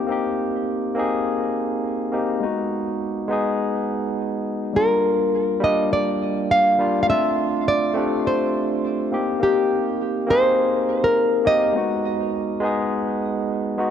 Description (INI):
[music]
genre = chillout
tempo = 103 BPM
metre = 4/4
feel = straight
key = unclear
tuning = A4 = 439 Hz
[part]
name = barky tine electric piano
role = accompaniment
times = 0.0-13.9 s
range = G3 to Ab4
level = -22 LUFS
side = moving between left 3 dB and right 3 dB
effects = overdrive, auto-pan, ping-pong delay
[part]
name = nylon-string guitar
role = melody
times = 4.8-13.5 s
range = G4 to F5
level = -20 LUFS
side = equal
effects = tape echo
[sound]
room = moderate plate reverb, RT60 3.5 s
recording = none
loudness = -19 LUFS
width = side -8 dB against mid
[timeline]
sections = 0.0-13.9 A section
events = none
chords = 0.0 Abmaj9; 2.4 Abm7; 4.8 Gm7; 7.1 Fmaj13/A; 9.1 Abmaj9; 11.7 Abm7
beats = | 0.10 0.68 1.26 1.85 | 2.43 3.01 3.59 4.18 | 4.76 5.34 5.92 6.51 | 7.09 7.67 8.25 8.84 | 9.42 10.00 10.58 11.17 | 11.75 12.33 12.91 13.50